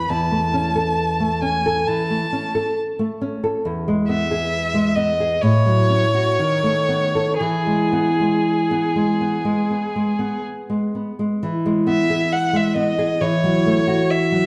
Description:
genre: romantic duo for violin and classical guitar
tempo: 57-69 BPM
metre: 4/4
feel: rubato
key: E major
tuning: A4 = 441 Hz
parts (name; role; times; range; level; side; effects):
- rich violin; melody; 0.0-14.5 s; G#4 to B5; -24 LUFS; equal; none
- nylon-string guitar; accompaniment; 0.0-14.5 s; E2 to B4; -22 LUFS; equal; none
room: moderate scoring stage reverb, RT60 1.6 s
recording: dark, warm production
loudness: -20 LUFS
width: mono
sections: 0.0-11.4 A section; 11.4-14.5 A section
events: none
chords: 0.1 A/E; 3.7 E; 5.4 F#m/A; 6.4 B7/D#; 7.4 E; 13.2 F#m7/E

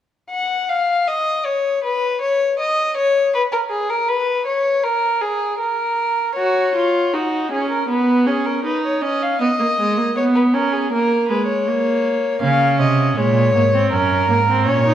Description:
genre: classical, baroque-style fugue for string quartet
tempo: 80 BPM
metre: 4/4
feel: straight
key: F# major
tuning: A4 = 441 Hz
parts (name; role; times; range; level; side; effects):
- dark violin; second line; 0.3-14.9 s; F#4 to F#5; -18 LUFS; left 2 dB; none
- rich viola; accompaniment; 6.4-14.9 s; G#3 to F#4; -18 LUFS; right 2 dB; none
- warm cello; bass; 12.4-14.9 s; F#2 to C#3; -18 LUFS; right 4 dB; none
room: wet recital hall reverb, RT60 1.6 s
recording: none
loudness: -16 LUFS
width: side -10 dB against mid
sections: 0.3-6.4 A section; 6.4-14.9 B section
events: none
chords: 0.3 N.C.; 6.4 F#5; 7.9 B; 9.4 C#5; 10.9 G#sus24; 12.4 C#; 13.9 F#

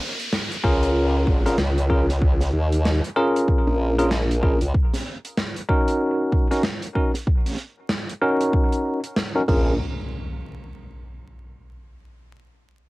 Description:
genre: glitch hop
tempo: 95 BPM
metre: 4/4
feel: swing 60% on 16ths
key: Bb minor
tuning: A4 = 440 Hz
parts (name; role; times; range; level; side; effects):
- downlifter and impact; sound effects; 0.0-4.7, 9.5-12.0 s; none; -34 LUFS; equal; none
- gated 80s drum kit; drums; 0.2-9.6 s; crash cymbal, hi-hat, snare drum; -27 LUFS; right 1 dB; cassette tape
- bell-like tine electric piano; stabs; 0.6-9.7 s; Db4 to Bb4; -22 LUFS; equal; medium stereo tremolo, sidechain pumping, low-pass filter, cassette tape, analog delay
- formant-sweep wobble bass; bass; 0.6-4.7, 9.5-9.8 s; Ab1 to Eb2; -21 LUFS; equal; chorus
- electronic kick drum; drums; 0.6-9.6 s; none; -21 LUFS; equal; cassette tape
room: light reverb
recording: home recording on cassette, vinyl crackle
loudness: -19 LUFS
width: side -21 dB against mid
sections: 0.0-9.8 A section; 9.8-12.3 B section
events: filter sweep on tine electric piano 0.0-9.8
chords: 0.0 Bbm7; 4.7 Gb6/Db; 9.5 Bbm7; 9.8 N.C.

